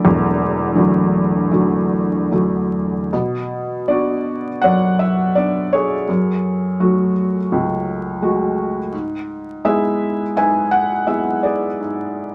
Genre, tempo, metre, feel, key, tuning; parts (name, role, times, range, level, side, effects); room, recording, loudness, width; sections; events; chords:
classical, lyrical solo piano; 71-85 BPM; 4/4; rubato; A4 = 439 Hz
felt-muted upright piano; solo; 0.0-12.3 s; E1 to G#5; -18 LUFS; equal
wet small room reverb, RT60 0.6 s; vinyl crackle; -18 LUFS; mono
0.0-3.1 A section; 3.1-12.3 B section
0.0 E9sus4; 3.1 Bmadd9; 6.1 F#madd9; 8.9 E/G#